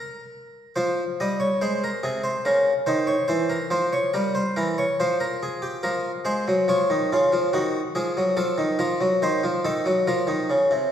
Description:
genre	classical, baroque-style two-part invention for harpsichord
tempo	71 BPM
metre	3/4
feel	straight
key	Bb minor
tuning	A4 = 441 Hz
part	harpsichord	solo	0.0-10.9 s	C3 to Eb5	-21 LUFS	equal	none
room	wet scoring stage reverb, RT60 1.8 s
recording	heard from further back in the room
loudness	-21 LUFS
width	side -9 dB against mid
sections	0.0-10.9 A section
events	none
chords	0.0 N.C.; 0.8 Fm; 2.5 Bbm/Db; 3.3 C7/E; 5.0 Fm; 5.8 Bbm/F; 7.5 Ebm; 8.4 F7; 10.1 Bbm

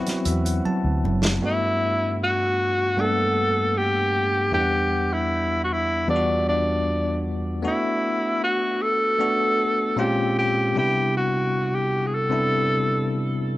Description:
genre	lush 1970s-style soul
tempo	77 BPM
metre	4/4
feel	straight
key	G major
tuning	A4 = 441 Hz
part	breathy tenor saxophone	melody	0.0-13.3 s	D4 to A4	-22 LUFS	equal	none
part	bell-like tine electric piano	accompaniment	0.0-13.6 s	E2 to A5	-24 LUFS	left 1 dB	medium stereo tremolo
part	warm soul drum kit	drums	0.1-1.4 s	hi-hat, snare drum	-26 LUFS	right 1 dB	none
part	vintage muted fingered electric bass	bass	0.3-1.4 s	F#1 to E2	-23 LUFS	equal	none
part	congas	percussion	0.3-1.2 s	none	-29 LUFS	right 4 dB	none
room	light reverb, studio ambience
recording	lossy compression artefacts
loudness	-20 LUFS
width	side -17 dB against mid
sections	0.0-1.4 A section; 1.4-13.6 B section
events	tine electric piano fill 0.0-1.4; drum fill 0.6-1.4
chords	0.0 D13; 1.4 Gmaj9; 4.5 Em7; 7.7 Bm7; 10.0 Bbm9; 10.8 Cmaj7

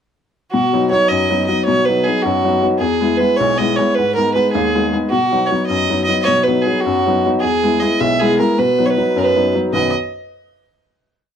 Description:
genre	celtic folk, Celtic jig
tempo	104 BPM (dotted quarters)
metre	6/8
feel	straight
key	B major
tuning	A4 = 444 Hz
part	warm fiddle	melody	0.5-9.9 s	F#4 to E5	-16 LUFS	right 3 dB	plate reverb
part	clear upright piano	accompaniment	0.5-9.9 s	B1 to B4	-16 LUFS	left 3 dB	none
room	moderate small room reverb, RT60 0.5 s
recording	dark, warm production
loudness	-13 LUFS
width	side -8 dB against mid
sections	0.5-9.7 A section; 9.7-10.9 final chord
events	none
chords	0.5 B; 2.8 E; 4.0 G#m; 5.1 B; 7.4 E; 8.6 B

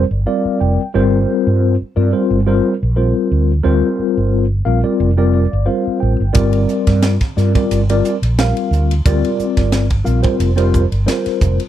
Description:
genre	electric jazz fusion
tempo	89 BPM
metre	4/4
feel	swing 54% on 16ths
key	G minor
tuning	A4 = 440 Hz
part	mellow tine electric piano	accompaniment	0.0-11.6 s	G3 to G5	-16 LUFS	left 2 dB	medium stereo tremolo, lush chorus
part	mellow fretless electric bass	bass	0.0-11.6 s	F1 to G2	-15 LUFS	right 1 dB	none
part	crisp fusion drum kit	drums	6.3-11.7 s	hi-hat, kick drum, ride cymbal, snare drum	-18 LUFS	right 1 dB	none
room	light reverb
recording	none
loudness	-13 LUFS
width	side -11 dB against mid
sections	0.0-11.7 A section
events	tine electric piano fill 0.0-0.9, 5.0-6.4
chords	0.0 Gm11

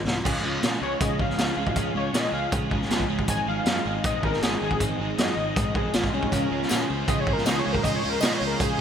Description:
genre	indie rock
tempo	158 BPM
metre	4/4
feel	straight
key	Db major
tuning	A4 = 440 Hz
part	overdriven semi-hollow guitar	riff	0.0-8.8 s	Ab2 to Ab4	-32 LUFS	left 8 dB	ensemble chorus
part	twelve-string electric guitar	riff	0.0-8.8 s	Ab2 to C5	-31 LUFS	right 11 dB	analog chorus, digital delay
part	fuzz fingered electric bass	bass	0.0-8.7 s	Ab1 to Db3	-32 LUFS	equal	overdrive
part	raw garage drum kit	drums	0.1-8.7 s	crash cymbal, hi-hat, kick drum, snare drum	-26 LUFS	equal	none
part	wide unison lead	melody	0.8-8.8 s	Db4 to Ab5	-29 LUFS	left 2 dB	none
part	brilliant trumpet	second line	6.3-8.8 s	Ab4 to C5	-33 LUFS	right 6 dB	digital delay
part	tambourine	percussion	6.7-8.3 s	none	-41 LUFS	left 6 dB	none
room	light reverb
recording	bright 1980s-style digital production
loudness	-22 LUFS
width	side -8 dB against mid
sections	0.3-8.8 A section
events	drum fill 0.0; analog synth lead solo 0.3-8.8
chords	0.3 Db; 3.3 Ab; 6.3 Db

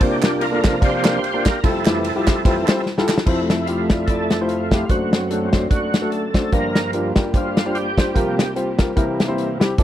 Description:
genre	uptempo gospel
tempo	147 BPM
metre	4/4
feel	swing 56% on 8ths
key	F major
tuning	A4 = 439 Hz
part	warm baby grand piano	accompaniment	0.0-9.8 s	F1 to D5	-22 LUFS	left 2 dB	none
part	overdriven tonewheel organ	sustained chords	0.0-9.8 s	F2 to C5	-23 LUFS	right 2 dB	slow rotary speaker, chorus vibrato
part	natural country drum kit	drums	0.0-9.8 s	crash cymbal, hi-hat, kick drum, ride cymbal, snare drum	-18 LUFS	equal	none
part	group handclap	percussion	0.2-3.2 s	none	-28 LUFS	right 10 dB	none
part	warm studio string section	sustained chords	3.3-9.8 s	F#2 to E5	-32 LUFS	right 5 dB	stereo widening
room	small room ambience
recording	dry, close 1970s-style studio recording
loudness	-16 LUFS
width	side -12 dB against mid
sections	0.0-3.3 A section; 3.3-9.8 B section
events	tonewheel organ solo 0.0-3.3, 3.3-9.8; drum fill 2.9-3.3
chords	0.0 C9sus4; 1.6 Fmaj9; 3.3 Fmaj7; 4.9 D7/F#; 6.5 Gm7; 8.2 C7sus4; 9.0 C7

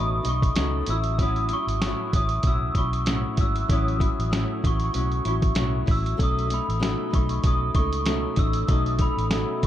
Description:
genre	indie pop, bedroom pop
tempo	96 BPM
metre	4/4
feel	swing 55% on 16ths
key	A lydian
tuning	A4 = 439 Hz
part	glockenspiel with rubber mallets	melody	0.0-9.7 s	B5 to E6	-29 LUFS	equal	ensemble chorus, digital delay
part	flamenco guitar	accompaniment	0.0-9.7 s	A2 to E4	-29 LUFS	left 2 dB	lush chorus, warbly pitch drift
part	vintage muted fingered electric bass	bass	0.0-9.7 s	G#1 to C#2	-26 LUFS	equal	none
part	lo-fi sampler-style drum kit	drums	0.2-9.7 s	hi-hat, kick drum, snare drum	-25 LUFS	equal	none
room	light reverb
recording	dark, warm production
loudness	-21 LUFS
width	side -12 dB against mid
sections	0.0-9.7 A section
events	none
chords	0.0 B9; 0.9 A6; 6.2 B9

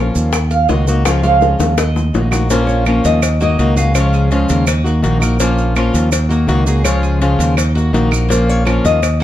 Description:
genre	latin, Cuban son and guajira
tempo	165 BPM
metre	4/4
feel	straight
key	unclear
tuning	A4 = 441 Hz
part	fingerpicked plugged-in swing-style acoustic guitar	accompaniment	0.0-9.2 s	Db3 to Gb4	-17 LUFS	left 2 dB	none
part	Cuban tres	arpeggios	0.0-9.2 s	Bb3 to F5	-22 LUFS	right 5 dB	none
part	modern bright fingered electric bass	bass	0.0-9.2 s	Bb1 to Eb2	-14 LUFS	equal	none
part	maracas	percussion	0.2-9.2 s	none	-28 LUFS	right 7 dB	none
part	bongos and cowbell	percussion	0.3-9.2 s	none	-23 LUFS	left 6 dB	none
part	claves	percussion	0.3-9.2 s	none	-25 LUFS	right 6 dB	none
part	nylon-string guitar	melody	2.5-4.1, 8.3-9.2 s	Bb4 to F5	-18 LUFS	left 3 dB	none
room	light reverb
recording	dark, warm production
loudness	-12 LUFS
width	side -12 dB against mid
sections	0.0-2.5 A section; 2.5-9.2 B section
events	Cuban tres solo 0.0-2.5; drum fill 1.6-2.5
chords	0.3 Ebm; 1.1 Db; 1.8 Ebm; 2.5 Bbm; 3.2 Ebm; 4.0 Db; 4.7 Ebm; 5.4 Bbm; 6.1 Ebm; 6.9 Db; 7.6 Ebm; 8.3 Bbm

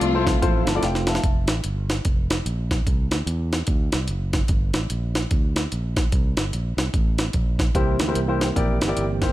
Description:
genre	uptempo gospel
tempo	147 BPM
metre	4/4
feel	swing 62% on 8ths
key	F major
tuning	A4 = 441 Hz
part	warm studio string section	melody	0.0-0.7 s	A3 to F4	-26 LUFS	left 4 dB	none
part	warm upright piano	accompaniment	0.0-1.5, 7.7-9.3 s	C3 to A5	-25 LUFS	left 3 dB	none
part	mellow tonewheel organ	sustained chords	0.0-1.2, 7.7-9.3 s	E3 to G4	-27 LUFS	right 3 dB	slow rotary speaker, chorus vibrato
part	fingered electric bass	bass	0.0-9.3 s	F1 to E2	-25 LUFS	equal	none
part	jungle sampler-style drum kit	drums	0.0-9.3 s	hi-hat, kick drum, snare drum	-22 LUFS	equal	none
room	little or no reverb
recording	none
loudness	-20 LUFS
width	side -15 dB against mid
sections	0.0-1.2 A section; 1.2-9.3 B section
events	upright piano fill 0.4-1.2; drum fill 0.8-1.2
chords	0.0 Fmaj7; 1.2 F; 2.9 Cadd9; 3.7 D7; 4.5 Gm; 6.1 C5; 7.7 C7

